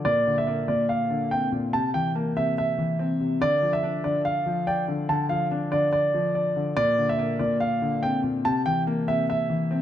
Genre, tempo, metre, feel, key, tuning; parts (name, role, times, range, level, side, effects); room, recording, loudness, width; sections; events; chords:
hip hop; 143 BPM; 4/4; half-time; D minor; A4 = 439 Hz
dark grand piano; melody; 0.0-9.8 s; D5 to A5; -24 LUFS; right 2 dB; low-pass filter, tape echo
dark concert grand piano; accompaniment; 0.0-9.8 s; Bb2 to D5; -26 LUFS; left 3 dB; low-pass filter
wet recital hall reverb, RT60 1.4 s, studio reverb; -22 LUFS; side -10 dB against mid
0.0-3.4 A section; 3.4-9.8 B section
0.1 Bbadd9; 1.7 C7; 3.4 Dm; 6.8 Bbadd9; 8.4 C7